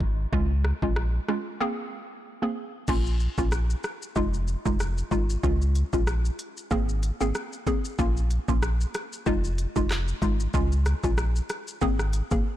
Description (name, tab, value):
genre	dancehall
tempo	94 BPM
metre	4/4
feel	swing 56% on 16ths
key	Bb minor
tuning	A4 = 439 Hz
part	hollow square pluck	accompaniment	0.0-12.5 s	Ab3 to Ab4	-30 LUFS	equal	chorus
part	sub bass with octave	bass	0.0-12.4 s	F1 to Db2	-25 LUFS	equal	none
part	island pop drum kit	drums	0.0-12.4 s	crash cymbal, handclaps, hi-hat, kick drum, rim click, shaker	-29 LUFS	equal	soft clipping on snare
room	little or no reverb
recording	blown-out, overdriven recording, overdrive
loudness	-24 LUFS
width	side -13 dB against mid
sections	0.0-2.9 A section; 2.9-12.6 B section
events	break 1.6-2.9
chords	0.3 Db; 1.6 Abadd9; 2.9 Bbm; 4.2 Fm7; 5.4 Db; 6.7 Abadd9; 8.0 Bbm; 9.3 Fm7; 10.5 Db; 11.8 Abadd9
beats	| 0.33 0.97 1.60 2.24 | 2.88 3.52 4.16 4.80 | 5.43 6.07 6.71 7.35 | 7.99 8.63 9.27 9.90 | 10.54 11.18 11.82 12.46